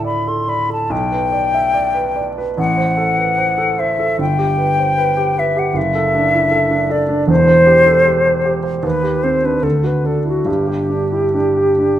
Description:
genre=classical, romantic duo for flute and grand piano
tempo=68-79 BPM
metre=4/4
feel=rubato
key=G major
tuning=A4 = 442 Hz
part: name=hollow concert flute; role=melody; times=0.0-12.0 s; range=F#4 to C6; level=-15 LUFS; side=left 2 dB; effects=none
part: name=warm grand piano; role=accompaniment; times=0.0-12.0 s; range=E1 to E5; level=-17 LUFS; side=right 2 dB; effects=none
room=moderate recital hall reverb, RT60 1.5 s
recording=none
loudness=-13 LUFS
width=side -12 dB against mid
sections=0.0-12.0 A section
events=none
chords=0.0 D5; 0.9 G/B; 2.6 F#dim/A; 4.2 G; 5.8 D/F#; 7.3 C/E; 8.8 Cm/Eb; 9.6 D; 10.5 G5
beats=0.05 | 0.91 1.76 2.58 3.39 | 4.20 4.99 5.76 6.52 | 7.29 8.07 8.84 9.64 | 10.48 11.35

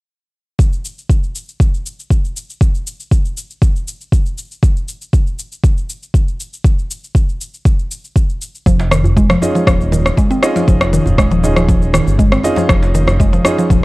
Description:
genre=afro house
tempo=119 BPM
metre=4/4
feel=straight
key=unclear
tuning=A4 = 440 Hz
part: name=electronic kick drum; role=drums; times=0.6-13.8 s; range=none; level=-12 LUFS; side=equal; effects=studio reverb
part: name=electronic shaker and rim click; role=drums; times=0.6-13.8 s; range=none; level=-20 LUFS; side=left 1 dB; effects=studio reverb
part: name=mallet-like synth pluck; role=arpeggios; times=8.7-13.8 s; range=Eb3 to C4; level=-16 LUFS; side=equal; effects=chorus, phaser, sidechain pumping, tape echo
part: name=smooth synth bass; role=bass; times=8.7-13.8 s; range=Eb1 to G1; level=-16 LUFS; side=equal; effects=tube saturation, sidechain pumping
part: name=djembe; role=percussion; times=8.8-13.6 s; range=none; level=-23 LUFS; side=equal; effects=none
part: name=felt-muted upright piano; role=stabs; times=9.4-13.8 s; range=Db4 to Eb5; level=-19 LUFS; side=right 2 dB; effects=sidechain pumping, tape echo
room=digital ambience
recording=dry, gritty hardware recording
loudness=-12 LUFS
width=side -21 dB against mid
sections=0.6-13.8 A section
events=none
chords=0.6 N.C.; 8.7 Dbadd9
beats=| 0.59 1.10 1.60 2.11 | 2.61 3.11 3.62 4.12 | 4.63 5.13 5.63 6.14 | 6.64 7.15 7.65 8.16 | 8.66 9.16 9.67 10.17 | 10.68 11.18 11.69 12.19 | 12.69 13.20 13.70

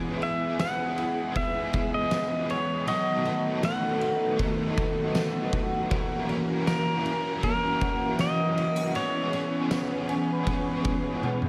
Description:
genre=dream pop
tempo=79 BPM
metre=4/4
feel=straight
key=unclear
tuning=A4 = 445 Hz
part: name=biting overdriven guitar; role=accompaniment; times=0.0-11.5 s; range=B2 to C#5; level=-37 LUFS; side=equal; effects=tremolo, analog chorus, analog delay
part: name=string machine, violas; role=sustained chords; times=0.0-11.5 s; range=D#3 to B4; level=-33 LUFS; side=equal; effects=ensemble chorus
part: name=fingerpicked twelve-string acoustic guitar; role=arpeggios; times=0.0-11.5 s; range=E3 to G#4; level=-35 LUFS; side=equal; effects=analog chorus, analog delay
part: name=pedal steel guitar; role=melody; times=0.2-11.5 s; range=A#4 to F#5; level=-32 LUFS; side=equal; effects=analog delay
part: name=oversized low-tuned drum kit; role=drums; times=0.2-11.5 s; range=kick drum, ride cymbal, snare drum, tambourine, toms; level=-34 LUFS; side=equal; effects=none
part: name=large celesta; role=texture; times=2.9-5.4, 10.1-11.5 s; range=G#5 to C#6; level=-42 LUFS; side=equal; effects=analog delay
room=moderate spring reverb, RT60 2.4 s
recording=echo-heavy mix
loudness=-27 LUFS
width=mono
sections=0.0-11.5 A section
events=drum fill 11.2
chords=0.0 E; 2.9 B7; 5.9 F#7; 8.9 C#m7/E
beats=0.59 1.35 2.11 | 2.87 3.63 4.39 5.15 | 5.91 6.67 7.43 8.19 | 8.95 9.71 10.47 11.23

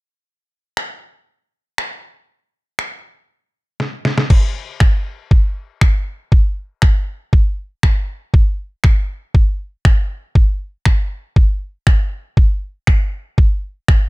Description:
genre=pop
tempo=119 BPM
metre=4/4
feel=straight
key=none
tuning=none
part: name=detuned 8-bit digital drum machine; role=drums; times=0.8-14.0 s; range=crash cymbal, finger snaps, kick drum, snare drum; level=-13 LUFS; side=equal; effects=none
room=little or no reverb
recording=dark, warm production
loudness=-15 LUFS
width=side -23 dB against mid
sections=0.3-4.3 A section; 4.3-14.1 B section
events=drum fill 3.8-4.3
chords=none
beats=| 0.27 0.77 1.28 1.78 | 2.29 2.79 3.29 3.80 | 4.30 4.81 5.31 5.82 | 6.32 6.82 7.33 7.83 | 8.34 8.84 9.35 9.85 | 10.35 10.86 11.36 11.87 | 12.37 12.87 13.38 13.88

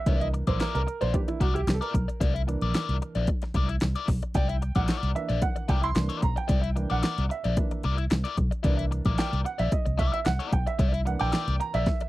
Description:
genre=funk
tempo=112 BPM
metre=4/4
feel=straight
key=C mixolydian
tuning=A4 = 440 Hz
part: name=warm upright piano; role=stabs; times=0.0-12.1 s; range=E3 to C6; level=-32 LUFS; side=right 5 dB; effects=none
part: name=crunchy overdriven guitar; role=accompaniment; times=0.1-12.1 s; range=E4 to D5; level=-32 LUFS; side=left 7 dB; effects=wah
part: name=vintage muted fingered electric bass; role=bass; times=0.1-11.9 s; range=Bb1 to C2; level=-27 LUFS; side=equal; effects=none
part: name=deep house drum kit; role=drums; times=0.1-12.1 s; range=hi-hat, kick drum, snare drum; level=-27 LUFS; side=equal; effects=overdrive
room=little or no reverb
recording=dry, close 1970s-style studio recording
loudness=-24 LUFS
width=side -17 dB against mid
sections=0.0-12.1 A section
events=upright piano solo 0.0-12.1; drum fill 11.9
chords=0.0 C9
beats=| 0.06 0.60 1.13 1.67 | 2.21 2.74 3.28 3.81 | 4.35 4.89 5.42 5.96 | 6.50 7.03 7.57 8.11 | 8.64 9.18 9.72 10.26 | 10.80 11.33 11.87

